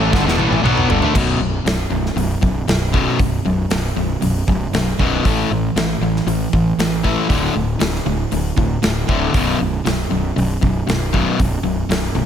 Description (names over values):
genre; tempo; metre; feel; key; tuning
hard rock; 117 BPM; 4/4; straight; B minor; A4 = 440 Hz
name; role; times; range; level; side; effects
overdriven tonewheel organ; sustained chords; 0.0-1.1 s; G3 to A4; -30 LUFS; right 1 dB; none
cranked stack guitar; riff; 0.0-1.1 s; E2 to B3; -21 LUFS; right 1 dB; overdrive
overdriven semi-hollow guitar; riff; 0.0-12.3 s; B1 to B3; -20 LUFS; left 8 dB; none
sludgy distorted guitar; riff; 0.0-12.3 s; B1 to B3; -22 LUFS; right 10 dB; overdrive
fuzz fingered electric bass; bass; 0.0-12.3 s; B0 to D2; -22 LUFS; equal; overdrive
big rock drum kit; drums; 0.1-12.0 s; crash cymbal, hi-hat, kick drum, snare drum, toms; -21 LUFS; equal; none
room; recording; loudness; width
studio reverb; none; -15 LUFS; side -9 dB against mid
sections
0.0-1.1 A section; 1.1-12.3 B section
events
drum fill 0.1-1.1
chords
0.0 G5; 1.1 B5; 5.2 A5; 7.3 D5; 9.3 B5